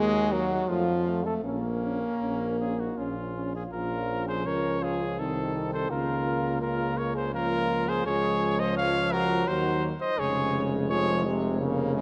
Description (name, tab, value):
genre	classical, brass quintet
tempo	84 BPM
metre	3/4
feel	rubato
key	Bb minor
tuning	A4 = 441 Hz
part	clear trumpet	melody	0.0-11.2 s	Db4 to F5	-34 LUFS	equal	none
part	mellow flugelhorn	second line	0.0-11.2 s	Db4 to Db5	-35 LUFS	equal	none
part	clear French horn	accompaniment	0.0-12.0 s	F3 to Db4	-33 LUFS	equal	none
part	mellow trombone	accompaniment	0.0-12.0 s	C3 to Db4	-35 LUFS	equal	none
part	warm bass trombone	bass	0.0-12.0 s	F1 to F2	-36 LUFS	equal	none
room	moderate concert hall reverb, RT60 2.5 s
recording	none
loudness	-28 LUFS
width	mono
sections	0.0-3.7 A section; 3.7-12.0 B section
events	none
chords	0.0 Ebm; 0.7 F; 1.5 Bbm; 5.2 Adim/C; 5.9 Bbm/Db; 8.1 Db; 9.5 Cdim/Eb; 10.2 Db/F